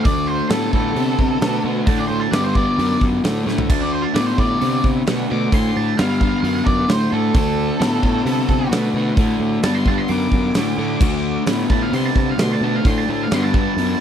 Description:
blues rock power trio and southern rock; 131 BPM; 4/4; straight; D mixolydian; A4 = 440 Hz
octave-fuzz lead guitar; melody; 0.0-14.0 s; A4 to D6; -25 LUFS; right 2 dB; distortion
raw garage guitar; riff; 0.0-14.0 s; D3 to B3; -20 LUFS; left 2 dB; overdrive
huge arena drum kit; drums; 0.0-13.9 s; crash cymbal, hi-hat, kick drum, snare drum, toms; -21 LUFS; right 1 dB
fuzz fingered electric bass; bass; 0.1-13.9 s; D2 to C3; -23 LUFS; equal; overdrive
little or no reverb; dry, close 1970s-style studio recording; -16 LUFS; side -9 dB against mid
0.0-14.0 A section
lead electric guitar solo 0.0-14.0; drum fill 3.5
0.0 D5

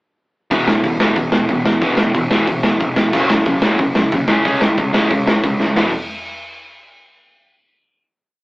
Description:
punk rock; 183 BPM; 4/4; straight; E major; A4 = 440 Hz
distorted electric guitar; riff; 0.5-5.9 s; E2 to C#4; -21 LUFS; left 1 dB; distortion
distorted electric guitar; riff; 0.5-5.9 s; E2 to C#4; -22 LUFS; right 2 dB; distortion
fuzz picked electric bass; bass; 0.5-5.9 s; E1 to D#2; -23 LUFS; equal; overdrive
raw garage drum kit; drums; 0.5-5.8 s; crash cymbal, hi-hat, kick drum, snare drum, toms; -16 LUFS; equal
light reverb; rough rehearsal-room recording, AM radio sound; -13 LUFS; side -22 dB against mid
0.5-5.8 verse; 5.8-7.1 final chord
drum fill 5.6
0.5 E5; 3.1 F#5; 4.3 C#5; 5.8 E5

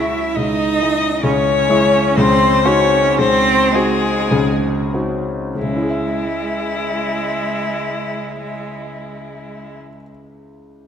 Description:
classical, slow romantic movement for piano trio; 46-68 BPM; 3/4; rubato; C# minor; A4 = 442 Hz
warm violin; melody; 0.0-9.8 s; E4 to E5; -19 LUFS; left 5 dB
clear cello; second line; 0.0-9.8 s; G#3 to E4; -21 LUFS; right 5 dB
dark concert grand piano; accompaniment; 0.0-10.9 s; C#2 to E5; -19 LUFS; left 1 dB
wet scoring stage reverb, RT60 2.1 s; -14 LUFS; side -8 dB against mid
0.0-5.6 A section; 5.6-9.2 B section
slowing down 0.0-5.6
0.0 C#m; 2.2 G#7/C#; 5.6 C#m

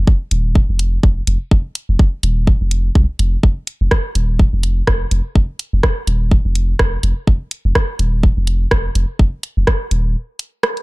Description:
minimal techno; 125 BPM; 4/4; swing 57% on 16ths; A4 = 437 Hz
punchy sub bass; bass; 0.0-10.2 s; Eb1 to C2; -16 LUFS; equal; sidechain pumping
electronic kick drum; drums; 0.1-9.8 s; -13 LUFS; equal
garage drum kit; drums; 0.3-10.8 s; hi-hat, rim click; -19 LUFS; right 1 dB
little or no reverb; dark, warm production; -14 LUFS; side -23 dB against mid
0.0-10.8 A section
break 10.2-10.8

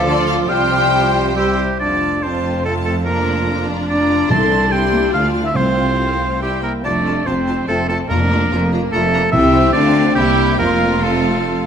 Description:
quick classical-period movement for symphony orchestra; 134-149 BPM; 3/4; rubato; F major; A4 = 441 Hz
clear studio violin section; melody; 0.0-11.7 s; D5 to C6; -27 LUFS; left 6 dB
bright oboe; second line; 0.0-11.7 s; G4 to A5; -20 LUFS; right 1 dB
rich studio violin section; second line; 0.0-11.7 s; A3 to C5; -24 LUFS; equal
silver concert flute; second line; 0.0-1.6 s; D6 to F6; -22 LUFS; right 1 dB
clear bassoon; accompaniment; 0.0-1.6 s; F3 to G3; -24 LUFS; equal
rich studio viola section; accompaniment; 0.0-11.7 s; F3 to G4; -24 LUFS; right 2 dB
dark French horn section; sustained chords; 0.0-11.7 s; D3 to A4; -21 LUFS; left 3 dB
clear studio double bass section; bass; 0.0-11.7 s; F1 to D2; -23 LUFS; right 2 dB
rich studio cello section; bass; 0.0-11.7 s; C2 to D3; -23 LUFS; right 1 dB
timpani; percussion; 4.3-9.7 s; F2 to C3; -23 LUFS; equal
moderate scoring stage reverb, RT60 1.6 s; -14 LUFS; side -8 dB against mid
0.0-1.8 A section; 1.8-11.7 B section
0.5 Csus4; 1.4 C; 1.8 F; 3.1 Bb/F; 4.3 C; 5.1 Dm; 5.6 F/C; 6.4 C; 6.8 F; 8.1 Bb/F; 9.3 C; 9.7 Dm; 10.2 C7; 10.6 F

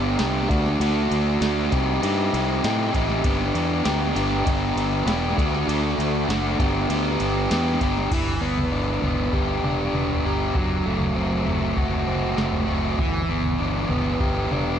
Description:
indie rock; 99 BPM; 4/4; straight; G major; A4 = 440 Hz
fuzz guitar; riff; 0.0-14.8 s; E3 to G4; -22 LUFS; equal; distortion, analog delay
growling fingered electric bass; bass; 0.0-14.8 s; E1 to A2; -26 LUFS; equal; overdrive
soft vintage rhythm box; drums; 0.2-14.7 s; crash cymbal, kick drum, ride cymbal, snare drum, toms; -28 LUFS; equal; analog delay
light reverb; echo-heavy mix; -20 LUFS; side -8 dB against mid
0.0-8.1 A section; 8.1-14.8 B section
0.0 G; 0.5 D; 1.7 Cm; 3.2 G; 5.4 D; 6.6 G6; 10.5 F#dim; 13.0 G6

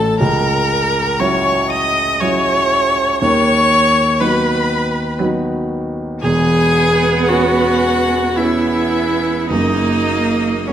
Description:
classical, slow romantic movement for piano quartet; 52-61 BPM; 3/4; rubato; B major; A4 = 440 Hz
rich violin; melody; 0.0-10.7 s; C#5 to D#6; -21 LUFS; left 8 dB
clear viola; accompaniment; 0.0-10.7 s; C#4 to D#5; -16 LUFS; right 1 dB
dark baby grand piano; accompaniment; 0.0-10.7 s; E1 to A4; -18 LUFS; equal
rich cello; second line; 1.2-10.7 s; F#3 to B3; -21 LUFS; right 4 dB
wet recital hall reverb, RT60 1.5 s; -13 LUFS; side -10 dB against mid
0.0-10.7 A section
0.2 F#7/C#; 3.2 B/D#; 6.2 C#m7/E; 9.5 F#

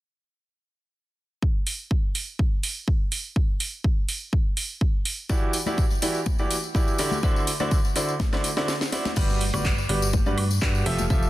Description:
piano house; 124 BPM; 4/4; straight; G major; A4 = 439 Hz
electronic kick drum; drums; 1.4-11.2 s; -23 LUFS; equal
house drum kit; drums; 1.7-11.0 s; crash cymbal, handclaps, hi-hat, snare drum, woodblock; -29 LUFS; right 2 dB
bright grand piano; riff; 5.3-11.3 s; D3 to E5; -27 LUFS; right 1 dB; sidechain pumping, tape echo
tambourine and congas; percussion; 5.3-11.3 s; -32 LUFS; left 6 dB
solid FM bass; bass; 9.2-11.3 s; F1 to G2; -26 LUFS; equal; sidechain pumping
little or no reverb; dense, heavily limited modern master; -22 LUFS; side -16 dB against mid
1.4-9.2 A section; 9.2-11.3 B section
drum fill 8.2-9.2; kick drops out 8.7-9.2
1.4 N.C.; 5.3 Em9; 7.2 D9; 9.2 Gmaj7

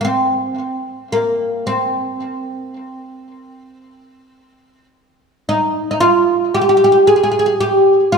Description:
turkish; 112 BPM (eighths); 10/8; straight; C makam ussak; A4 = 440 Hz
oud; solo; 0.0-8.2 s; Bb3 to Ab4; -13 LUFS; equal; tape echo
wet scoring stage reverb, RT60 1.6 s; -13 LUFS; side -5 dB against mid
0.0-8.2 A section

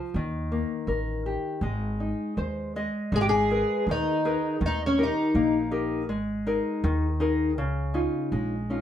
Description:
fado-style ballad; 81 BPM; 2/4; rubato; Ab major, G# harmonic minor from 3.1 s; A4 = 440 Hz
nylon-string guitar; accompaniment; 0.0-8.8 s; C#3 to Eb5; -28 LUFS; left 2 dB
upright bass; bass; 0.1-8.8 s; Ab1 to Eb2; -30 LUFS; equal
fingerpicked twelve-string acoustic guitar; melody; 3.2-5.7 s; C#4 to G#4; -24 LUFS; left 1 dB; lush chorus
moderate studio reverb, RT60 0.6 s; -24 LUFS; side -10 dB against mid
0.0-3.1 A section; 3.1-8.8 B section
nylon-string guitar fill 2.0-3.1
0.2 Eb; 1.6 Ab; 3.1 G#madd9; 4.6 D#; 6.1 G#sus2; 7.6 C#add9

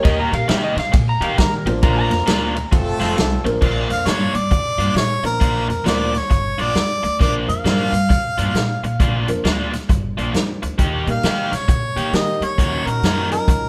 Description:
electric blues shuffle; 134 BPM; 4/4; swing 64% on 8ths; Bb major; A4 = 439 Hz
electric slide guitar; second line; 0.0-2.7 s; Eb5 to Bb5; -25 LUFS; equal
dark upright piano; accompaniment; 0.0-13.7 s; F3 to Bb4; -28 LUFS; equal
biting overdriven guitar; riff; 0.0-13.5 s; Bb2 to G4; -27 LUFS; equal
bright horn section; stabs; 0.0-3.5, 10.8-13.3 s; A3 to Bb4; -29 LUFS; equal
upright bass; bass; 0.0-13.7 s; F1 to Eb3; -26 LUFS; equal
vintage drum kit; drums; 0.0-13.6 s; crash cymbal, hi-hat, kick drum, ride cymbal, snare drum; -22 LUFS; equal
warm harmonica; melody; 3.9-13.7 s; Bb4 to F5; -24 LUFS; equal
moderate studio reverb, RT60 0.7 s; band playing live in one room; -19 LUFS; mono
0.0-3.6 A section; 3.6-13.7 B section
electric slide guitar solo 0.0-3.6
0.0 Eb; 1.8 Bb; 2.7 F; 3.6 Bb; 10.8 Eb; 12.6 Ebm7

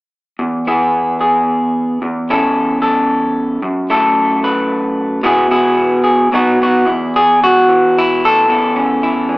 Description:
folk, solo fingerstyle acoustic guitar; 112 BPM; 3/4; straight; E major; A4 = 440 Hz
electric guitar through a small old amp; solo; 0.4-9.4 s; E2 to B4; -11 LUFS; equal
moderate large studio reverb, RT60 1.2 s; band playing live in one room, small speaker sound; -11 LUFS; side -21 dB against mid
0.4-6.9 A section; 6.9-9.4 B section
0.4 E; 2.0 A/E; 3.6 F#m7; 5.2 E/B; 6.3 B; 6.9 N.C.; 8.5 A/E

